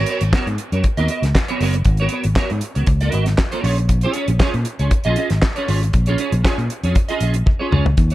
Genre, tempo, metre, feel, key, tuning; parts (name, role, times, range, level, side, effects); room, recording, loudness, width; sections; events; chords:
disco; 118 BPM; 4/4; straight; A4 = 445 Hz
clean electric guitar; accompaniment; 0.0-8.1 s; B3 to D#5; -23 LUFS; right 3 dB; ensemble chorus
fingered electric bass; bass; 0.0-8.1 s; F#1 to A#2; -18 LUFS; equal
damped 70s drum kit; drums; 0.1-8.1 s; handclaps, hi-hat, kick drum, snare drum, toms; -19 LUFS; equal
small room ambience; dark, warm production; -16 LUFS; side -16 dB against mid
0.0-8.1 A section
drum fill 7.5-8.0
0.0 G#m11; 3.6 A#m7